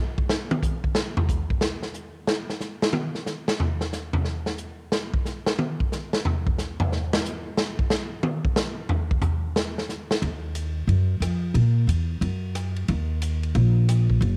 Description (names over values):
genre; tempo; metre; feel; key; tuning
modal jazz; 182 BPM; 4/4; swing 65% on 8ths; Eb minor; A4 = 440 Hz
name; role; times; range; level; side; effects
swinging big-band drum kit; drums; 0.2-14.3 s; hi-hat, kick drum, ride cymbal, rim click, snare drum, toms; -27 LUFS; equal; cassette tape
upright bass; bass; 10.2-14.4 s; Gb1 to Bb2; -23 LUFS; equal; none
room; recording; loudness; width
light reverb; home recording on cassette; -25 LUFS; mono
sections
0.0-10.2 A section; 10.2-14.4 B section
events
drum solo 0.0-10.2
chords
none